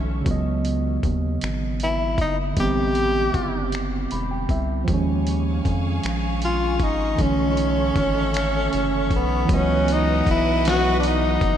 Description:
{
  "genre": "slow six-eight R&B",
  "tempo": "52 BPM (dotted quarters)",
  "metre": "6/8",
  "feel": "straight",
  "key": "unclear",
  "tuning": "A4 = 441 Hz",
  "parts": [
    { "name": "tine electric piano", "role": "accompaniment", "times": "0.0-11.6 s", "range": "C#3 to B5", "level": "-25 LUFS", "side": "right 4 dB", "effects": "wide subtle chorus" },
    { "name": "clear studio string section", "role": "sustained chords", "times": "0.0-0.2, 4.9-11.6 s", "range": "G#4 to D#6", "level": "-32 LUFS", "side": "equal", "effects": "none" },
    { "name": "rubbery square bass", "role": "bass", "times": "0.0-11.6 s", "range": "E1 to E#2", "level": "-25 LUFS", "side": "left 1 dB", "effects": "none" },
    { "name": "dusty soul sampler-style drum kit", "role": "drums", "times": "0.3-11.6 s", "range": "finger snaps, hi-hat, kick drum, snare drum", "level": "-27 LUFS", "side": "left 1 dB", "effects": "none" },
    { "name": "breathy tenor saxophone", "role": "melody", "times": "1.8-11.6 s", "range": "B3 to G4", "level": "-24 LUFS", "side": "left 1 dB", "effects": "diffuse ambient delay" },
    { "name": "warm horn section", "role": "stabs", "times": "9.5-11.4 s", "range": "E3 to F#4", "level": "-35 LUFS", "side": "left 4 dB", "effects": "none" }
  ],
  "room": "wet cathedral reverb, RT60 5.7 s",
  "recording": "dreamy mix soaked in reverb",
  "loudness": "-19 LUFS",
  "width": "side -9 dB against mid",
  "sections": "0.3-9.5 A section; 9.5-11.6 B section",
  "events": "tine electric piano fill 3.7-4.9",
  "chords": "0.3 C#9sus4; 2.6 Am11; 4.9 D#9sus4; 7.2 Bm11; 9.5 C#m11"
}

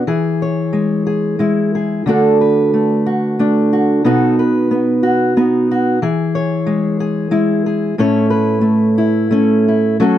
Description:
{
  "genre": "folk, solo fingerstyle acoustic guitar",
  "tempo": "91 BPM",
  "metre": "3/4",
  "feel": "rubato",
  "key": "A major",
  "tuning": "A4 = 440 Hz",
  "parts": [
    { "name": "fingerpicked old ladder-braced acoustic guitar", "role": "solo", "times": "0.0-10.2 s", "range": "A2 to C#5", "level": "-13 LUFS", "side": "equal", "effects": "none" }
  ],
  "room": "light reverb",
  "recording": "dark, warm production",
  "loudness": "-13 LUFS",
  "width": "side -11 dB against mid",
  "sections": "0.0-10.0 A section",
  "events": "none",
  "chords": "0.1 E; 2.1 D; 4.1 B7; 6.0 E; 8.0 A"
}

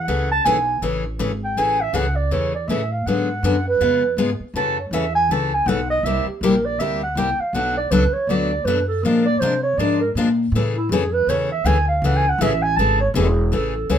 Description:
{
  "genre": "acoustic string swing (jazz manouche)",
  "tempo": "161 BPM",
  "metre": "4/4",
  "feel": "swing 61% on 8ths",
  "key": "A major",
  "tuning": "A4 = 439 Hz",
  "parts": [
    { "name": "breathy clarinet", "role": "melody", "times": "0.0-14.0 s", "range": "E4 to A5", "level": "-21 LUFS", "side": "right 3 dB", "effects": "none" },
    { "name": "upright bass", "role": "bass", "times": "0.0-14.0 s", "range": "E1 to C3", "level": "-22 LUFS", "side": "equal", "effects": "none" },
    { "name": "picked steel-string acoustic guitar", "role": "accompaniment", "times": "0.1-14.0 s", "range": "B2 to Bb4", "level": "-22 LUFS", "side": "left 4 dB", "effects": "none" }
  ],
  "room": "light reverb",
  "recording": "minimal, uncompressed stereo recording",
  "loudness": "-17 LUFS",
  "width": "side -9 dB against mid",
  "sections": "0.0-1.6 A section; 1.6-13.5 A section",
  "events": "clarinet solo 0.0-13.5",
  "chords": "0.0 Amaj7; 3.1 G#m7b5; 3.8 C#7; 4.6 F#m7; 6.1 C9; 7.5 Bm7; 9.0 Bb9; 10.5 Amaj7"
}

